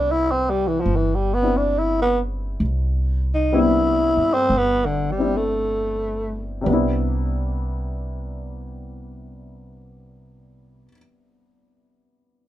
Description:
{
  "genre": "jazz ballad",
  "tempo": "52-74 BPM",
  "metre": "4/4",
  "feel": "swing 67% on 8ths",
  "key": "C major",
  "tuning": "A4 = 436 Hz",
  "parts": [
    { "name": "growling tenor saxophone", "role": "melody", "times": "0.0-6.5 s", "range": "D3 to E4", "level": "-20 LUFS", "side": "equal", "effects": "none" },
    { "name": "warm baby grand piano", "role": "accompaniment", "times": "0.0-12.5 s", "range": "C3 to E4", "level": "-26 LUFS", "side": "left 2 dB", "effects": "none" },
    { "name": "upright bass", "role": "bass", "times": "0.0-10.9 s", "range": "G1 to G2", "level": "-25 LUFS", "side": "equal", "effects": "none" }
  ],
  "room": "light reverb",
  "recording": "minimal, uncompressed stereo recording",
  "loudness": "-19 LUFS",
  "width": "side -13 dB against mid",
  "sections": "0.0-6.7 A section; 6.7-11.3 B section",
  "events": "slowing down 0.0-6.7; tenor saxophone solo 0.0-6.7",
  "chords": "0.0 Cmaj9"
}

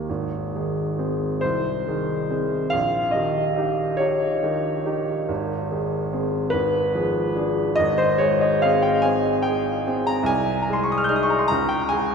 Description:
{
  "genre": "classical, romantic nocturne for solo piano",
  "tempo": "43-50 BPM (dotted quarters)",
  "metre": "6/8",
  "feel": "rubato",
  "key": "Ab major",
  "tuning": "A4 = 436 Hz",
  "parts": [
    { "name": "clear upright piano", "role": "solo", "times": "0.0-12.1 s", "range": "Ab1 to G6", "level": "-20 LUFS", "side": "equal", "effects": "none" }
  ],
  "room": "wet cathedral reverb, RT60 5.4 s",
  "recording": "minimal, uncompressed stereo recording",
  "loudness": "-20 LUFS",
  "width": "side -6 dB against mid",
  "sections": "0.1-12.1 A section",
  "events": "none",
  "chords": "0.1 Ab; 1.4 Ab/C; 2.7 Eb7/Bb; 5.3 Ab; 6.5 Abdim7; 7.8 Ab; 10.3 Ab/C; 11.5 Db5"
}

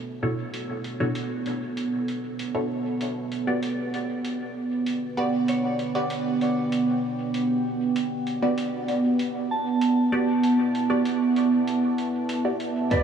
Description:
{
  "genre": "ambient dub",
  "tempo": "97 BPM",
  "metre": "4/4",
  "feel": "straight",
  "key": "unclear",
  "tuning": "A4 = 440 Hz",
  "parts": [
    { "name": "deep dark ambient pad", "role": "sustained chords", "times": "0.0-13.0 s", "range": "B3 to A5", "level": "-24 LUFS", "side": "right 2 dB", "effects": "chorus, built-in reverb" },
    { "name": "filtered dub chord stab", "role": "stabs", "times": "0.2-12.6 s", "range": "B2 to D5", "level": "-30 LUFS", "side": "equal", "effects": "phaser, dub echo" },
    { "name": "electronic hi-hat", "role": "drums", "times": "0.5-13.0 s", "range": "none", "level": "-40 LUFS", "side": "equal", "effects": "studio ambience, dub echo" },
    { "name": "soft synth bell", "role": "arpeggios", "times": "5.5-13.0 s", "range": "B4 to A5", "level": "-34 LUFS", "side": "equal", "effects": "chorus, tape echo" },
    { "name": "electric slide guitar", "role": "melody", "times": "12.9-13.0 s", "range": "D5", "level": "-25 LUFS", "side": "left 1 dB", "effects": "ensemble chorus" },
    { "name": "electronic kick drum", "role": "drums", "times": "12.9-13.0 s", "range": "none", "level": "-23 LUFS", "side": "equal", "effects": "studio ambience" }
  ],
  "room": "wet huge ambient reverb, RT60 6.9 s",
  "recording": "dreamy mix soaked in reverb, vinyl crackle, small room ambience",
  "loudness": "-23 LUFS",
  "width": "side -7 dB against mid",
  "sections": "0.0-12.9 A section",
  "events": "filter sweep on ambient pad 0.0-12.9",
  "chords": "0.0 Bm11; 3.0 Em7/B"
}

